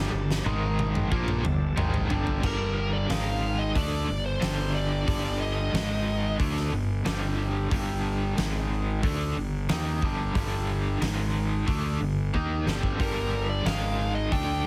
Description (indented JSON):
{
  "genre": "hard rock",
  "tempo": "91 BPM",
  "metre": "4/4",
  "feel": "straight",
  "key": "G minor",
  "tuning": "A4 = 440 Hz",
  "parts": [
    { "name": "overdriven tonewheel organ", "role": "sustained chords", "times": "0.0-2.4 s", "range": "Ab3 to A5", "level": "-45 LUFS", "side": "equal", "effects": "none" },
    { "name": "cranked stack guitar", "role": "riff", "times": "0.0-14.7 s", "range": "G2 to Eb4", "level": "-35 LUFS", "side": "equal", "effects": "overdrive, tremolo" },
    { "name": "crunchy overdriven guitar", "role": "riff", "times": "0.0-14.7 s", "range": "G2 to Eb4", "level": "-35 LUFS", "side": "equal", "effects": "none" },
    { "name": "fuzz fingered electric bass", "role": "bass", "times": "0.0-14.6 s", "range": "G1 to Eb2", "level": "-31 LUFS", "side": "equal", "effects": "overdrive" },
    { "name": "huge arena drum kit", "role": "drums", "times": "0.3-14.5 s", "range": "crash cymbal, hi-hat, kick drum, snare drum, toms", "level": "-34 LUFS", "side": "equal", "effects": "none" },
    { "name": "bluesy overdriven lead guitar", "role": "melody", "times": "2.5-6.4, 13.0-14.7 s", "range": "Bb4 to G5", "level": "-34 LUFS", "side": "equal", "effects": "distortion, tape echo" }
  ],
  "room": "light reverb",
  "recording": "heavily compressed radio sound, multiband compression",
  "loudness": "-27 LUFS",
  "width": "mono",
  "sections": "0.0-2.4 A section; 2.4-14.7 B section",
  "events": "drum fill 0.0-2.4, 12.3-13.0",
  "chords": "0.5 Ab5; 1.1 Gm; 3.1 Ab5; 3.8 G5; 5.7 Ab5; 6.4 G5; 8.4 Ab5; 9.0 Gm; 11.0 Ab5; 11.7 Gm; 13.7 Ab5"
}